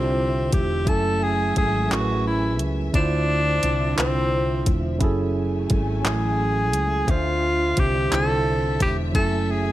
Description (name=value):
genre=slow six-eight R&B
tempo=58 BPM (dotted quarters)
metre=6/8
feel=straight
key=F# minor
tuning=A4 = 440 Hz
part: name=breathy tenor saxophone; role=melody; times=0.0-9.7 s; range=C4 to A4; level=-24 LUFS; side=equal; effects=slapback echo
part: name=bright tine electric piano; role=accompaniment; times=0.0-9.7 s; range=D3 to G#5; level=-26 LUFS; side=right 4 dB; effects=none
part: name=warm studio string section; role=sustained chords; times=0.0-9.7 s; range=D3 to G#5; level=-34 LUFS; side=left 2 dB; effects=none
part: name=woody fretless electric bass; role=bass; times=0.0-9.7 s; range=E1 to D2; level=-25 LUFS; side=equal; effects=none
part: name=smooth R&B drum kit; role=drums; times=0.5-9.3 s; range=handclaps, hi-hat, kick drum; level=-23 LUFS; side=equal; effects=none
room=little or no reverb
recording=none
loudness=-19 LUFS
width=side -14 dB against mid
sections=0.0-9.7 A section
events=none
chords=0.0 Dm9; 0.9 F#m9; 2.9 Dm9; 5.0 F#m9; 7.1 Dm9; 9.1 F#m9